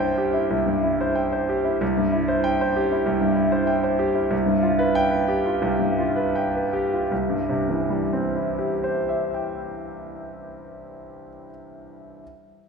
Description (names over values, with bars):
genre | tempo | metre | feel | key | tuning
classical, virtuoso piano study | 77-97 BPM | 4/4 | rubato | C major | A4 = 440 Hz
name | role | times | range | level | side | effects
bright concert grand piano | solo | 0.0-12.2 s | C2 to G5 | -21 LUFS | equal | none
room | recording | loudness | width
wet concert hall reverb, RT60 2.2 s | heard from further back in the room | -20 LUFS | side -5 dB against mid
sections
0.0-1.8 A section; 1.8-7.1 B section; 7.1-10.0 C section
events
slowing down 0.5-7.1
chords
0.0 C; 4.3 G7/C; 7.1 C